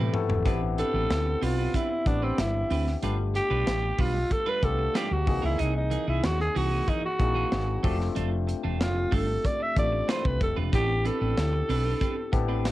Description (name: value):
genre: polished 1980s jazz-funk pop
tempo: 94 BPM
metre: 4/4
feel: straight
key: A minor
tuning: A4 = 443 Hz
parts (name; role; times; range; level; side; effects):
- growling alto saxophone; melody; 0.0-12.7 s; C4 to E5; -29 LUFS; right 1 dB; cassette tape, plate reverb
- barky tine electric piano; accompaniment; 0.0-12.7 s; E3 to A4; -33 LUFS; left 7 dB; overdrive, lush chorus, cassette tape, plate reverb
- clean electric guitar; riff; 0.0-12.6 s; E3 to D5; -34 LUFS; right 8 dB; wide subtle chorus, cassette tape
- woody fretless electric bass; bass; 0.0-12.7 s; E1 to D#2; -28 LUFS; equal; none
- crisp fusion drum kit; drums; 0.1-12.7 s; hi-hat, kick drum, snare drum, toms; -30 LUFS; equal; none
room: light reverb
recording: home recording on cassette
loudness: -24 LUFS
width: side -16 dB against mid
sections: 0.5-12.7 A section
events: drum fill 0.0-0.5; alto saxophone solo 0.5-12.7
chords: 0.5 Am11; 3.0 G7; 5.3 C7alt; 7.8 F6; 10.7 Am11